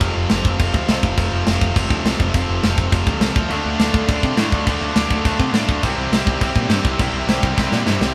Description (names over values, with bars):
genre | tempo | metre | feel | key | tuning
punk rock | 206 BPM | 4/4 | straight | F major | A4 = 440 Hz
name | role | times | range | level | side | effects
distorted electric guitar | riff | 0.0-8.1 s | F2 to D4 | -27 LUFS | equal | overdrive
tight distorted guitar | riff | 0.0-8.1 s | C3 to F4 | -26 LUFS | equal | distortion
modern bright picked electric bass | bass | 0.0-8.1 s | F1 to C3 | -25 LUFS | equal | none
tight metal drum kit | drums | 0.0-8.1 s | crash cymbal, kick drum, snare drum | -22 LUFS | equal | none
tight distorted guitar | riff | 3.5-8.1 s | C3 to D4 | -29 LUFS | equal | distortion
room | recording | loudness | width
light reverb | band playing live in one room | -18 LUFS | mono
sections
0.0-8.1 A section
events
drum fill 7.6-8.1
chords
0.0 F; 3.4 Dm; 5.8 C